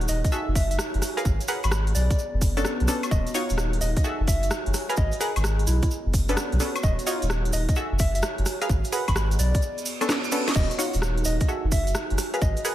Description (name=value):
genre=UK garage, two-step garage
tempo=129 BPM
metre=4/4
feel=swing 67% on 16ths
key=unclear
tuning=A4 = 441 Hz
part: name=soft dub sub bass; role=bass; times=0.0-12.6 s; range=Eb1 to B1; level=-24 LUFS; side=equal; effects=sidechain pumping
part: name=garage drum kit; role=drums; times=0.0-12.7 s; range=crash cymbal, hi-hat, rim click, snare drum, woodblock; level=-31 LUFS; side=equal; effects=none
part: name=warbly tape-like pad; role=texture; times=0.0-12.7 s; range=B3 to Ab5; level=-34 LUFS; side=right 2 dB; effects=chorus, built-in reverb, sidechain pumping
part: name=soft struck synth lead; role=melody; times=0.1-12.6 s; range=Fb4 to Cb6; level=-34 LUFS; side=equal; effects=chorus, tremolo, analog delay
part: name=cabasa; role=percussion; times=0.1-12.7 s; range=none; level=-34 LUFS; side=right 3 dB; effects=none
part: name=electronic kick drum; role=drums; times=0.2-12.5 s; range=none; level=-24 LUFS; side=equal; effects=none
part: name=punchy chord stab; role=stabs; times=0.3-12.7 s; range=B3 to Gb5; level=-30 LUFS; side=equal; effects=chorus, analog delay
part: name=reverse cymbal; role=sound effects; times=9.8-10.6 s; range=none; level=-35 LUFS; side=right 5 dB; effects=none
room=light reverb, digital ambience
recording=none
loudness=-22 LUFS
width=side -13 dB against mid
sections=0.0-12.7 A section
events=reverse cymbal 9.8-10.6; drum fill 10.1-10.6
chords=0.3 Gbm9; 1.0 Abm9; 2.0 Bm9; 3.1 Ebm9; 4.0 Gbm9; 4.7 Abm9; 5.7 Bm9; 6.8 Ebm9; 7.8 Gbm9; 8.5 Abm9; 9.4 Bm9; 10.6 Ebm9; 11.5 Gbm9; 12.2 Abm9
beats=0.32 0.79 | 1.25 1.72 2.18 2.65 | 3.11 3.58 4.04 4.51 | 4.97 5.44 5.90 6.37 | 6.83 7.30 7.76 8.23 | 8.70 9.16 9.62 10.09 | 10.55 11.02 11.48 11.95 | 12.42